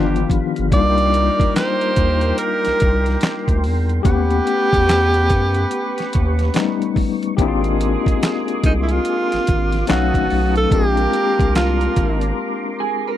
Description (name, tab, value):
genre	R&B, neo-soul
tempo	72 BPM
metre	4/4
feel	swing 63% on 16ths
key	Eb major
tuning	A4 = 441 Hz
part	breathy tenor saxophone	melody	0.0-12.3 s	D4 to D5	-20 LUFS	right 2 dB	none
part	overdriven tine electric piano	accompaniment	0.0-13.2 s	Eb3 to F#5	-22 LUFS	left 10 dB	fast tremolo
part	mellow tonewheel organ	sustained chords	0.0-13.2 s	G4 to D#6	-30 LUFS	right 2 dB	chorus vibrato, slow rotary speaker
part	clear horn section	stabs	0.0-12.8 s	Eb3 to B4	-28 LUFS	right 5 dB	none
part	round analog bass	bass	0.0-12.3 s	G1 to F#2	-19 LUFS	equal	none
part	boom bap sampler-style drum kit	drums	0.2-12.4 s	handclaps, hi-hat, kick drum, snare drum	-19 LUFS	equal	none
part	electric guitar through a small old amp	second line	12.8-13.2 s	Ab4 to Bb4	-22 LUFS	right 12 dB	analog chorus
room	little or no reverb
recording	dry, close 1970s-style studio recording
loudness	-15 LUFS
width	side -12 dB against mid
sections	0.0-13.2 A section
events	break 12.4-13.2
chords	0.0 G7b13; 0.7 Cm7; 4.0 Eb7alt; 7.4 Abmaj9#11; 9.9 B9; 10.7 Bb9